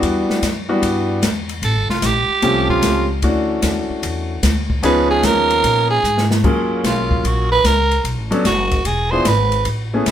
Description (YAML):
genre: jazz, small-group swing and bop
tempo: 150 BPM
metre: 4/4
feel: swing 67% on 8ths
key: F# major from 6.4 s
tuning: A4 = 440 Hz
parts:
  - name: warm baby grand piano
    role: accompaniment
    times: 0.0-10.1 s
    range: E3 to A4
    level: -19 LUFS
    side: left 1 dB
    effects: none
  - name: upright bass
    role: bass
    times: 0.0-10.1 s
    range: E1 to Bb2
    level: -21 LUFS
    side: equal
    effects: none
  - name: open jazz drum kit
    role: drums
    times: 0.0-10.1 s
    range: crash cymbal, hi-hat, kick drum, ride cymbal, snare drum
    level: -22 LUFS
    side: left 1 dB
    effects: none
  - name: growling tenor saxophone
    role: second line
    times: 1.6-10.1 s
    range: E#4 to B#4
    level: -17 LUFS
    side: right 3 dB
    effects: none
room: moderate studio reverb, RT60 0.8 s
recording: band playing live in one room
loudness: -14 LUFS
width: side -10 dB against mid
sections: 0.0-6.4 A section; 6.4-10.1 A section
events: tenor saxophone solo 0.0-10.1; drum fill 6.0-6.4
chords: 0.0 Em7; 1.6 A7alt; 3.2 Dmaj9; 4.8 C#7; 6.4 F#maj9; 8.0 Bm7; 8.9 E7b9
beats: | 0.03 0.42 0.82 1.23 | 1.63 2.03 2.43 2.83 | 3.23 3.63 4.03 4.43 | 4.83 5.23 5.63 6.04 | 6.44 6.84 7.24 7.64 | 8.05 8.45 8.85 9.26 | 9.66 10.06